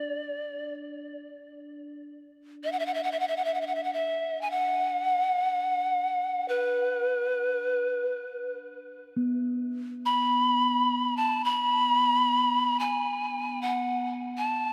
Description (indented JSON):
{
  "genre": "world meditative, free-time meditation music",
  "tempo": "free time",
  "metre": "none",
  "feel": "none",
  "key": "B dorian",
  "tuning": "A4 = 438 Hz",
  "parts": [
    { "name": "breathy bright pan flute", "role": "melody", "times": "0.0-14.7 s", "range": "B4 to B5", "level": "-28 LUFS", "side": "equal", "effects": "delay" },
    { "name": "bronze singing bowl", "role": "texture", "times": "0.0-1.1, 9.2-14.7 s", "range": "B3 to D4", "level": "-37 LUFS", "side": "equal", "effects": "none" }
  ],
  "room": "wet huge ambient reverb, RT60 3.7 s",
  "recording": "none",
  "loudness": "-28 LUFS",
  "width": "mono",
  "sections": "0.0-9.1 A section; 9.1-14.7 A section",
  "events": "none",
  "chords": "none"
}